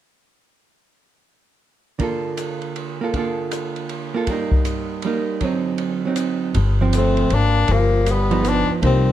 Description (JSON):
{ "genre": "jazz, small-group swing and bop", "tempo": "158 BPM", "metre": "3/4", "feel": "swing 64% on 8ths", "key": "G minor", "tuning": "A4 = 438 Hz", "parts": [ { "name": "archtop guitar, miked and amplified", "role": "accompaniment", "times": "2.0-9.1 s", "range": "D3 to A4", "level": "-22 LUFS", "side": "right 5 dB", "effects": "none" }, { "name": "open jazz drum kit", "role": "drums", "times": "2.0-8.9 s", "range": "hi-hat, kick drum, ride cymbal", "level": "-27 LUFS", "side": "equal", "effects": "none" }, { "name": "upright bass", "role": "bass", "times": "6.5-9.1 s", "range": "G1 to C2", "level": "-18 LUFS", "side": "left 1 dB", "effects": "none" }, { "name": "breathy trombone", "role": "second line", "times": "6.9-9.1 s", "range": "F3 to B3", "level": "-25 LUFS", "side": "right 2 dB", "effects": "none" }, { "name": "bright tenor saxophone", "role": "melody", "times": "7.0-9.1 s", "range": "Bb3 to D4", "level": "-20 LUFS", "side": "left 6 dB", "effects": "none" } ], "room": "moderate club reverb, RT60 0.7 s", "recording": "dark, warm production", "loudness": "-18 LUFS", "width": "side -12 dB against mid", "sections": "2.0-6.6 A section; 6.6-9.1 B section", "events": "none", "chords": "2.0 Bbmaj7/D; 4.3 Eb/G; 5.4 D7b9; 6.6 Gm11; 7.7 G7b13" }